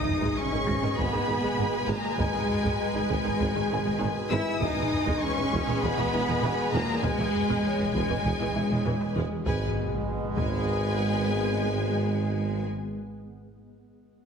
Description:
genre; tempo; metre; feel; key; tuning
cinematic, hybrid orchestral and electronic film score; 99 BPM; 4/4; straight; G# minor; A4 = 437 Hz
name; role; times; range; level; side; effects
warm symphonic violin section; melody; 0.0-12.7 s; G#5 to E6; -34 LUFS; left 2 dB; none
rich symphonic violin section; second line; 0.0-12.6 s; B4 to G#5; -36 LUFS; left 3 dB; none
dark symphonic viola section; accompaniment; 0.0-12.6 s; D#3 to G#4; -35 LUFS; left 1 dB; none
granular cloud pad; sustained chords; 0.0-12.7 s; B2 to B4; -37 LUFS; left 1 dB; none
warm French horn section; sustained chords; 0.0-12.7 s; A#2 to E4; -34 LUFS; left 4 dB; none
warm trombone section; sustained chords; 0.0-12.6 s; B2 to G#3; -38 LUFS; right 3 dB; none
rich symphonic cello section; bass; 0.0-12.6 s; G#3 to E4; -33 LUFS; right 2 dB; none
impact; sound effects; 0.0-2.2, 9.5-13.3 s; none; -37 LUFS; equal; none
taiko ensemble; drums; 0.1-10.7 s; none; -35 LUFS; left 1 dB; none
soft round pluck; arpeggios; 0.2-9.2 s; E3 to G#4; -38 LUFS; right 2 dB; none
rich symphonic double bass section; bass; 0.2-12.7 s; E1 to G#1; -32 LUFS; right 3 dB; none
warm tuba; bass; 0.7-12.7 s; E1 to G#1; -35 LUFS; right 2 dB; none
felt-muted upright piano; texture; 0.7-9.5 s; B4 to A#6; -41 LUFS; left 3 dB; none
room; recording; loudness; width
wet scoring stage reverb, RT60 1.6 s; heavily compressed radio sound, multiband compression; -24 LUFS; side -6 dB against mid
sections
0.0-9.5 A section; 9.5-11.9 B section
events
impact 0.0-2.2, 9.5-11.9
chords
0.0 G#m; 4.6 E; 9.5 G#m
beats
0.38 0.98 1.59 | 2.20 2.80 3.41 4.01 | 4.62 5.23 5.83 6.44 | 7.04 7.65 8.26 8.86 | 9.47 10.07 10.68 11.29

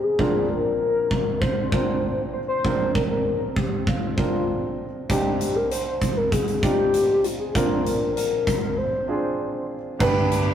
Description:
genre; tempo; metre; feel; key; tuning
piano-driven pop; 98 BPM; 4/4; straight; unclear; A4 = 440 Hz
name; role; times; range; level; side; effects
warm velvety synth lead; melody; 0.0-9.7 s; F4 to C5; -24 LUFS; left 2 dB; chorus
warm baby grand piano; accompaniment; 0.0-10.5 s; Bb1 to B4; -27 LUFS; right 2 dB; none
huge arena drum kit; drums; 0.2-10.5 s; crash cymbal, hi-hat, kick drum; -25 LUFS; right 1 dB; none
warm studio string section; sustained chords; 10.0-10.5 s; D3 to G4; -32 LUFS; left 1 dB; none
vintage muted fingered electric bass; bass; 10.0-10.5 s; G1; -24 LUFS; equal; none
room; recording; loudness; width
moderate studio reverb, RT60 0.5 s; rough rehearsal-room recording; -20 LUFS; side -9 dB against mid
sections
0.0-10.0 A section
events
break 8.8-10.0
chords
0.2 Bbadd9; 5.1 Cmadd9; 7.6 Bbadd9; 10.0 G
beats
| 0.19 0.80 1.42 2.03 | 2.65 3.26 3.87 4.49 | 5.10 5.71 6.33 6.94 | 7.55 8.16 8.78 9.39 | 10.00

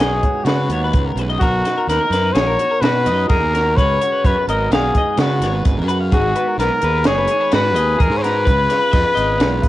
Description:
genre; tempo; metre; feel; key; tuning
math rock and midwest emo; 128 BPM; 5/4; straight; unclear; A4 = 439 Hz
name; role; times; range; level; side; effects
warm trumpet; melody; 0.0-9.7 s; F#4 to C#5; -18 LUFS; left 1 dB; none
electric guitar through a small old amp; accompaniment; 0.0-9.7 s; G#2 to G#4; -26 LUFS; right 7 dB; none
twelve-string electric guitar; arpeggios; 0.0-9.7 s; F#4 to E#5; -24 LUFS; left 5 dB; lush chorus
fuzz fingered electric bass; bass; 0.0-9.6 s; F#1 to C#3; -21 LUFS; equal; overdrive
compact cocktail drum kit; drums; 0.0-9.7 s; hi-hat, kick drum, snare drum; -19 LUFS; equal; cassette tape
room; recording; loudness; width
little or no reverb; home recording on cassette; -14 LUFS; side -15 dB against mid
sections
0.0-9.7 A section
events
none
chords
0.0 C#7sus4; 1.4 Bmaj7; 3.8 C#7sus4; 6.1 G#m7; 8.5 C#7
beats
0.00 0.48 0.95 | 1.42 1.89 2.36 2.83 3.30 | 3.77 4.25 4.72 5.19 5.66 | 6.12 6.59 7.07 7.53 8.00 | 8.47 8.94 9.41

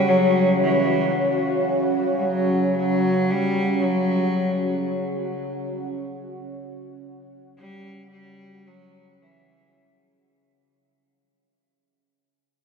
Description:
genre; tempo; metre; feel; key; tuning
dark ambient drone; 56 BPM; 4/4; straight; unclear; A4 = 440 Hz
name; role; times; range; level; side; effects
rich cello; melody; 0.0-10.0 s; E3 to G3; -23 LUFS; left 1 dB; ping-pong delay
sweeping resonant pad; sustained chords; 0.0-10.3 s; C#4 to F#5; -23 LUFS; right 1 dB; chorus
overtone-sweeping drone; drone; 0.0-10.4 s; C#3; -31 LUFS; right 1 dB; chorus, built-in reverb
bubbling stepped-filter texture; texture; 0.0-10.3 s; F#4; -39 LUFS; right 1 dB; none
room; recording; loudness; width
wet cathedral reverb, RT60 5.8 s; none; -20 LUFS; side -5 dB against mid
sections
0.0-10.3 A section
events
fade-out 0.0-10.3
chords
0.0 F#5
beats
0.62 | 1.70 2.77 3.84 4.91 | 5.98 7.05 8.12 9.20

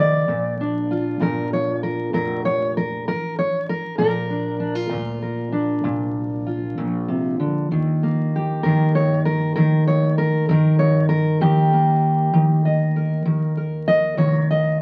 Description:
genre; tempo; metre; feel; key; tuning
acoustic country blues, solo or duo; 65 BPM (dotted quarters); 12/8; straight; Bb major; A4 = 440 Hz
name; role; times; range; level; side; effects
fingerpicked steel-string acoustic guitar; melody; 0.0-14.8 s; Bb2 to Eb5; -20 LUFS; equal; none
upright bass; bass; 0.0-14.8 s; F1 to A2; -34 LUFS; equal; none
room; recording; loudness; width
moderate studio reverb, RT60 0.6 s; very old 78 rpm record, vinyl crackle; -20 LUFS; mono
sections
0.0-14.8 A section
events
steel-string acoustic guitar solo 0.0-14.8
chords
0.3 Bb; 7.7 Eb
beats
| 0.29 1.22 2.15 3.07 | 4.00 4.93 5.86 6.78 | 7.71 8.63 9.56 10.48 | 11.41 12.33 13.26 14.18

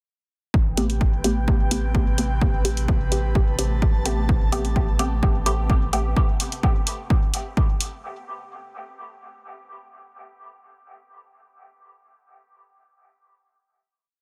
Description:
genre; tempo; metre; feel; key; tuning
dub techno; 128 BPM; 4/4; straight; A minor; A4 = 440 Hz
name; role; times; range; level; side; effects
airy breathy pad; sustained chords; 0.7-6.1 s; C3 to A5; -36 LUFS; equal; chorus, sidechain pumping
soft dub sub bass; bass; 0.5-6.1 s; A1; -27 LUFS; equal; sidechain pumping
electronic kick drum; drums; 0.5-7.7 s; none; -23 LUFS; equal; none
filtered dub chord stab; stabs; 0.8-6.1 s; A3 to G4; -31 LUFS; equal; phaser, sidechain pumping, dub echo
electronic hi-hat; drums; 0.8-7.9 s; none; -30 LUFS; equal; none
room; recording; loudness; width
digital ambience; dense, heavily limited modern master; -22 LUFS; mono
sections
0.5-8.0 groove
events
none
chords
0.5 Am9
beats
| 0.54 1.01 1.48 1.95 | 2.42 2.88 3.35 3.82 | 4.29 4.76 5.23 5.70 | 6.17 6.63 7.10 7.57

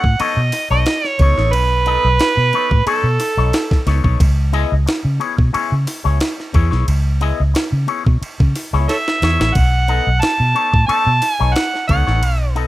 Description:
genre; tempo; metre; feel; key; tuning
funk; 90 BPM; 4/4; straight; unclear; A4 = 440 Hz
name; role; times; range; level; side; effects
overdriven harmonica; melody; 0.0-3.8, 8.9-12.5 s; A4 to A5; -17 LUFS; right 3 dB; none
electric guitar with an envelope filter; accompaniment; 0.0-12.7 s; B3 to D#5; -22 LUFS; left 7 dB; phaser
vintage muted fingered electric bass; bass; 0.0-12.7 s; A1 to C#3; -16 LUFS; equal; none
breakbeat sampler-style drum kit; drums; 0.0-12.7 s; hi-hat, kick drum, ride cymbal, snare drum; -20 LUFS; equal; none
room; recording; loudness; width
digital ambience; rough home demo mix; -13 LUFS; side -16 dB against mid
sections
0.0-12.7 A section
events
drum fill 8.9-9.5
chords
0.0 B9; 4.2 C#m7; 9.5 B9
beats
0.20 0.86 | 1.53 2.20 2.87 3.54 | 4.20 4.87 5.54 6.21 | 6.88 7.54 8.21 8.88 | 9.55 10.22 10.89 11.55 | 12.22

